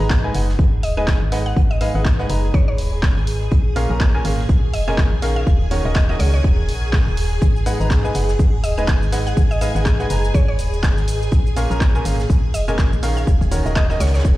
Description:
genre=piano house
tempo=123 BPM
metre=4/4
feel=swing 58% on 16ths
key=G# dorian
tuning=A4 = 441 Hz
part: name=string machine, violins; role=sustained chords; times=0.0-14.4 s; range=G#4 to G#5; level=-30 LUFS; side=left 1 dB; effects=ensemble chorus, sidechain pumping
part: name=bright baby grand piano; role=riff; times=0.0-14.4 s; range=A#2 to A#5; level=-25 LUFS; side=right 1 dB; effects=sidechain pumping, tape echo
part: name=organ-like FM bass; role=bass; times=0.0-14.4 s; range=D#1 to C#2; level=-20 LUFS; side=equal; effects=sidechain pumping
part: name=electronic kick drum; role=drums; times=0.1-14.4 s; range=none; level=-16 LUFS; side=equal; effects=none
part: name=jazz brush drum kit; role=drums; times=0.1-14.4 s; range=hi-hat, snare drum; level=-38 LUFS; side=right 1 dB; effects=sidechain pumping on hats, high-pass filter on hats, high-pass filter on snare, high-pass filter on room
part: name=punchy analog drum machine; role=drums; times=0.1-14.4 s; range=handclaps, hi-hat, shaker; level=-30 LUFS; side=equal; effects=overdrive
part: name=mallet-like synth pluck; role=melody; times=0.8-14.2 s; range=C#5 to F#5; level=-29 LUFS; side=equal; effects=chorus, tape echo
room=small room ambience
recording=played on a big sound system in a bare room, large studio reverb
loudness=-15 LUFS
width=side -17 dB against mid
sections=0.0-14.4 A section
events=none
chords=0.0 G#m7; 3.5 A#m7; 5.5 D#m7; 7.4 G#m7; 11.3 A#m7; 13.3 D#m7

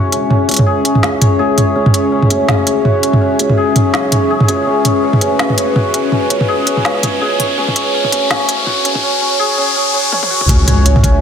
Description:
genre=half-time drum and bass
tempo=165 BPM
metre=4/4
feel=swing 56% on 16ths, half-time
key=C# phrygian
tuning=A4 = 440 Hz
part: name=dark analog pad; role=sustained chords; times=0.0-11.2 s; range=C#4 to E5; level=-17 LUFS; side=left 2 dB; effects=chorus, vintage 12-bit sampler grit, sidechain pumping
part: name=santur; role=arpeggios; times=0.0-11.2 s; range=C#4 to C#5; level=-17 LUFS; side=right 1 dB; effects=vintage 12-bit sampler grit, dub echo
part: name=long sustained 808-style bass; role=bass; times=0.0-11.2 s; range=E1 to D2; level=-21 LUFS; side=equal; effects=high-pass filter
part: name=riser and impact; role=sound effects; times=1.5-11.2 s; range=none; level=-19 LUFS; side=left 1 dB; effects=none
part: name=organic electronic drum kit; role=drums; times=0.1-11.1 s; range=hi-hat, snare drum, toms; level=-14 LUFS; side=right 1 dB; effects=none
part: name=electronic kick drum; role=drums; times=10.5-11.1 s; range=none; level=-12 LUFS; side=equal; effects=none
room=moderate lush hall reverb, RT60 1.7 s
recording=dense, heavily limited modern master, high-pass filter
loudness=-11 LUFS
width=side -8 dB against mid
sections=0.0-10.5 A section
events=build-up 0.0-10.5; filter sweep 0.0-10.5; riser 1.5-10.5; drum fill 10.1-10.5; impact 10.5-11.2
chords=0.0 C#m

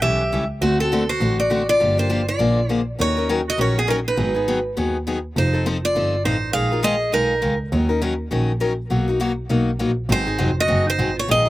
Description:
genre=acoustic string swing (jazz manouche)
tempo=203 BPM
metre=4/4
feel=swing 59% on 8ths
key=Eb minor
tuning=A4 = 441 Hz
part: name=picked steel-string acoustic guitar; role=melody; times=0.0-7.6, 10.1-11.5 s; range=F#4 to F5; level=-21 LUFS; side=equal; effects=slapback echo
part: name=clear clarinet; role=second line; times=0.0-7.6, 10.1-11.5 s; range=A3 to Ab4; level=-29 LUFS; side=right 5 dB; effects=slapback echo
part: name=picked steel-string acoustic guitar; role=accompaniment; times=0.0-11.5 s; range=B2 to Bb4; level=-23 LUFS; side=left 3 dB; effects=none
part: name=rich double bass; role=bass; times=0.0-11.5 s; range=F1 to Eb2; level=-23 LUFS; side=right 1 dB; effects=none
room=little or no reverb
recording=recorded outdoors, with no room sound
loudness=-18 LUFS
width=side -16 dB against mid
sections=0.0-3.0 A section; 3.0-11.5 B section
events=none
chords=0.0 A7; 0.6 D7; 1.8 Gm7; 2.4 Bb7; 3.0 Ebm7; 4.2 Abm7; 5.4 F7; 6.5 Bb7sus4; 7.7 Ebm7; 8.9 Bmaj7; 10.1 Ab7

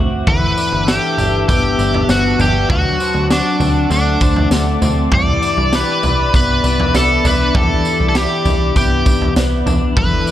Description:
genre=dream pop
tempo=99 BPM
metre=4/4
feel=straight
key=unclear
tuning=A4 = 440 Hz
part: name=warbly tape-like pad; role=sustained chords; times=0.0-10.3 s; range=B4 to E6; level=-23 LUFS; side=equal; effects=chorus, built-in reverb
part: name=twelve-string electric guitar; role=arpeggios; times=0.0-10.3 s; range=E3 to A4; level=-20 LUFS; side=left 4 dB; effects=lush chorus, digital delay
part: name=plucky analog bass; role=bass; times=0.0-10.2 s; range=G1 to D2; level=-18 LUFS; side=equal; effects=none
part: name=overdriven slide guitar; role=melody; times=0.3-10.3 s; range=D4 to D5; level=-18 LUFS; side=equal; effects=digital delay
part: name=raw garage drum kit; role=drums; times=0.3-10.3 s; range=kick drum, snare drum, tambourine, toms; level=-18 LUFS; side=right 1 dB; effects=none
room=moderate concert hall reverb, RT60 2.0 s, small room ambience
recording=none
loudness=-12 LUFS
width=side -12 dB against mid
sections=0.3-10.3 A section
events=none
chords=0.3 G69; 2.7 D7; 5.1 Cmaj9

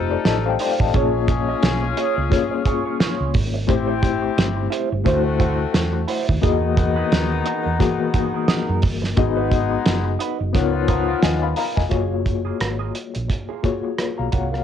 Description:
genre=lush 1970s-style soul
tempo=87 BPM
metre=4/4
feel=swing 58% on 16ths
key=F# major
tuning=A4 = 440 Hz
part: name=reed electric piano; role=accompaniment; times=0.0-14.6 s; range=E3 to B5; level=-23 LUFS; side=left 8 dB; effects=overdrive, fast tremolo, cassette tape, plate reverb
part: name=warm horn section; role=stabs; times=0.0-11.6 s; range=D#3 to A4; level=-26 LUFS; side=left 7 dB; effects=cassette tape, plate reverb
part: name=hollow-body short-scale fingered electric bass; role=bass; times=0.0-14.6 s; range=F1 to F#2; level=-24 LUFS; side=right 2 dB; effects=none
part: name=electric guitar through a small old amp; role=riff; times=0.1-14.6 s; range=A#3 to D#5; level=-28 LUFS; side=right 11 dB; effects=wah, cassette tape
part: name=cloth-damped thuddy drum kit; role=drums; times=0.3-14.6 s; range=hi-hat, kick drum, rim click, snare drum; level=-21 LUFS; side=right 2 dB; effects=cassette tape
room=light reverb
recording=home recording on cassette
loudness=-18 LUFS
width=side -9 dB against mid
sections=0.0-11.9 A section; 11.9-14.6 B section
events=reed electric piano fill 0.0-0.9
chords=0.0 F7; 0.9 A#m7; 3.7 Am7; 5.1 D9; 6.4 Emaj9#11; 9.2 G#m7; 10.5 C#13; 11.9 F#maj9

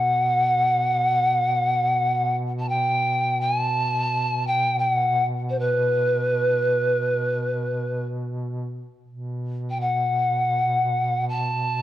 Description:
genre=caucasian folk, Caucasian lament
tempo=free time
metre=none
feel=none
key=unclear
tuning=A4 = 439 Hz
part: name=breathy polished pan flute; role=melody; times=0.0-11.8 s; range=B4 to A5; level=-21 LUFS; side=equal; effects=none
part: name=mellow duduk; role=drone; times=0.0-11.8 s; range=B2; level=-28 LUFS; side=equal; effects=none
room=wet recital hall reverb, RT60 1.5 s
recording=dark, warm production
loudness=-20 LUFS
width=side -13 dB against mid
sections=0.0-9.1 A section; 9.1-11.8 A section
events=none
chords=none

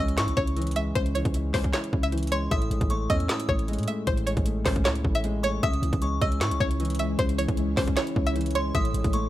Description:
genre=hip hop, trap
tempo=154 BPM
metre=4/4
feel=half-time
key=C# harmonic minor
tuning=A4 = 438 Hz
part: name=string-like resonator pluck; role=melody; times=0.0-9.1 s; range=B#4 to E5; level=-30 LUFS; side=equal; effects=chorus
part: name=delicate synth tine bell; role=second line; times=0.0-9.3 s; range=B#5 to E6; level=-34 LUFS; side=left 2 dB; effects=chorus, digital delay
part: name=dark concert grand piano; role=accompaniment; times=0.0-9.3 s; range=A2 to E4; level=-30 LUFS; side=equal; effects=none
part: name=warm 808-style bass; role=bass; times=0.0-9.3 s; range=A1 to A2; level=-28 LUFS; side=equal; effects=none
part: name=impact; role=sound effects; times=0.0-1.0 s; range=none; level=-41 LUFS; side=equal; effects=none
part: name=trap drum kit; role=drums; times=0.1-9.2 s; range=handclaps, hi-hat, kick drum, snare drum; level=-28 LUFS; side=equal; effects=none
part: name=ethereal airy pad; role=sustained chords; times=6.5-9.3 s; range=G#3 to C#5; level=-35 LUFS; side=left 3 dB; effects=ensemble chorus, built-in reverb
room=light reverb, digital ambience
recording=faint mains hum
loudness=-23 LUFS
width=side -14 dB against mid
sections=0.0-9.3 A section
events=impact 0.0-1.0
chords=0.0 C#m; 2.5 Amaj7; 5.6 C#m; 8.7 Amaj7

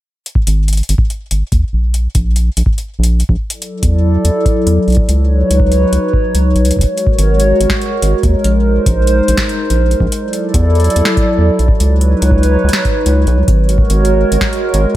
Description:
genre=IDM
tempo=143 BPM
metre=4/4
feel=swing 56% on 16ths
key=unclear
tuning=A4 = 440 Hz
part: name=booming analog drum machine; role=drums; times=0.3-14.8 s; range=hi-hat, snare drum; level=-20 LUFS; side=left 1 dB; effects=tape echo
part: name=electronic kick drum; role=drums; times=0.4-14.5 s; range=none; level=-14 LUFS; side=equal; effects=none
part: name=round analog bass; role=bass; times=0.5-14.9 s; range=G#1 to E2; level=-12 LUFS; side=equal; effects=none
part: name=hollow soft pad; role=sustained chords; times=3.5-15.0 s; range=F#3 to D5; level=-14 LUFS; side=equal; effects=chorus, sidechain pumping
room=light reverb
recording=echo-heavy mix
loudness=-10 LUFS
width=side -14 dB against mid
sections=0.1-6.9 A section; 6.9-15.0 B section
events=drum fill 6.6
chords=0.1 N.C.; 3.5 E9sus4; 5.2 C#9sus4; 6.9 G#9sus4; 8.5 A#9sus4; 10.2 E9sus4; 11.9 C#9sus4; 13.6 G#9sus4

